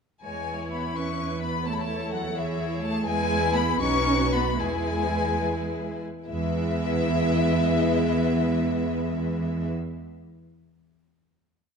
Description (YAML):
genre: quick classical-period movement for string orchestra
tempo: 70-87 BPM (dotted quarters)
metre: 6/8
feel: rubato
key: E major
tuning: A4 = 442 Hz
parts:
  - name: rich chamber violin section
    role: melody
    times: 0.2-9.7 s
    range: E5 to C#6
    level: -29 LUFS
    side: left 6 dB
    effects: none
  - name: warm chamber violin section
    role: second line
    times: 0.2-9.7 s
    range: D#4 to C#5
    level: -31 LUFS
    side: left 4 dB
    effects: none
  - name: rich chamber viola section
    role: accompaniment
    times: 0.2-9.7 s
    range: G#3 to C#5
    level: -30 LUFS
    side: right 2 dB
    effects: none
  - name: rich chamber cello section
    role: bass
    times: 0.2-9.7 s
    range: E3 to C#4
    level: -31 LUFS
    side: right 3 dB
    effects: none
  - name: rich chamber double bass section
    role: bass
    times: 0.2-9.7 s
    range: B1 to E2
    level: -30 LUFS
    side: right 3 dB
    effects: none
room: wet scoring stage reverb, RT60 1.5 s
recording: dark, warm production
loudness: -23 LUFS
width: side -6 dB against mid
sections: 0.2-6.3 A section; 6.3-9.6 final chord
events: slowing down 2.4-6.3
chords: 0.2 E; 1.7 A/E; 3.1 E; 3.8 B; 4.6 E